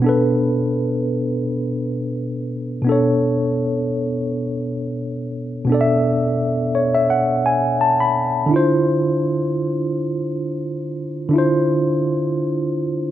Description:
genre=R&B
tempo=85 BPM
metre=4/4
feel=swing 55% on 16ths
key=unclear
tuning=A4 = 441 Hz
part: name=tine electric piano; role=solo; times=0.0-13.1 s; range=B2 to B5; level=-17 LUFS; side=equal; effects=medium stereo tremolo
room=moderate echo chamber reverb, RT60 2.0 s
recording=none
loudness=-17 LUFS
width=side -12 dB against mid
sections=0.0-13.1 A section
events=tine electric piano fill 6.4-8.5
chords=0.0 Bm9; 8.5 Dm9

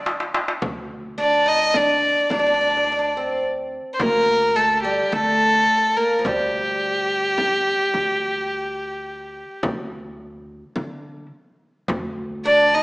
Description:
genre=Arabic maqam ensemble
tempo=106 BPM (eighths)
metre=10/8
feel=straight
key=unclear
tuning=A4 = 440 Hz
part: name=warm violin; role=melody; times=0.0-12.8 s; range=G4 to Eb5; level=-18 LUFS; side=equal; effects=none
part: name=oud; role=second line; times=0.0-12.8 s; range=F3 to Eb4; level=-23 LUFS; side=right 1 dB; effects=none
part: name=upright bass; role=bass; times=0.0-12.8 s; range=D2 to D3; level=-35 LUFS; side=equal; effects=none
part: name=darbuka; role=percussion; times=0.1-0.6, 11.9-12.6 s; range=none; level=-25 LUFS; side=equal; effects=none
part: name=frame drum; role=percussion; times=0.6-12.1 s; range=none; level=-30 LUFS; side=equal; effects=none
room=moderate recital hall reverb, RT60 1.8 s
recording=small speaker sound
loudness=-18 LUFS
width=side -24 dB against mid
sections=0.6-12.8 A section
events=drum fill 0.0-0.6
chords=none

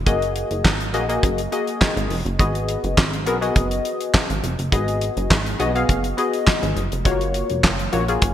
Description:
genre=early-eighties boogie funk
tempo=103 BPM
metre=4/4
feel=straight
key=G# dorian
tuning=A4 = 441 Hz
part: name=plucky analog bass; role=bass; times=0.0-8.3 s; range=E#1 to B1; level=-25 LUFS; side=equal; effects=none
part: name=funky polysynth comp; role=accompaniment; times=0.1-8.3 s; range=G#3 to E#5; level=-23 LUFS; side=left 3 dB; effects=chorus
part: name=damped 70s drum kit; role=drums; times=0.1-8.3 s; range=handclaps, hi-hat, kick drum, snare drum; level=-20 LUFS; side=equal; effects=gated reverb
room=moderate lush hall reverb, RT60 2.5 s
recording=bright 1980s-style digital production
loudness=-18 LUFS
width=side -11 dB against mid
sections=0.0-8.3 A section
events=none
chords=0.0 F#69; 2.4 G#m7; 7.1 F#maj7

